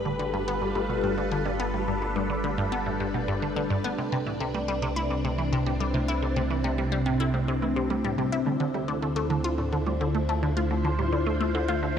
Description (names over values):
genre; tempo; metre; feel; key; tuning
ambient, sequencer-driven space music; 107 BPM; 4/4; straight; unclear; A4 = 440 Hz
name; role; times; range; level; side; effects
phased string machine; sustained chords; 0.0-12.0 s; C3 to C5; -28 LUFS; left 1 dB; ensemble chorus, phaser
resonant blip pluck; riff; 0.0-11.9 s; G2 to F4; -29 LUFS; equal; phaser, analog delay
warm sub bass; bass; 0.0-12.0 s; G1 to D2; -32 LUFS; equal; none
soft round pluck; arpeggios; 0.1-11.8 s; A2 to A4; -37 LUFS; right 1 dB; chorus, auto-pan, analog delay
room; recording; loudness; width
wet plate reverb, RT60 3.8 s; none; -24 LUFS; side -8 dB against mid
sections
0.0-12.0 A section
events
fade-in on synth arpeggio sound 0.0-12.0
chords
0.0 G7; 4.0 Cmaj7; 8.5 Dm7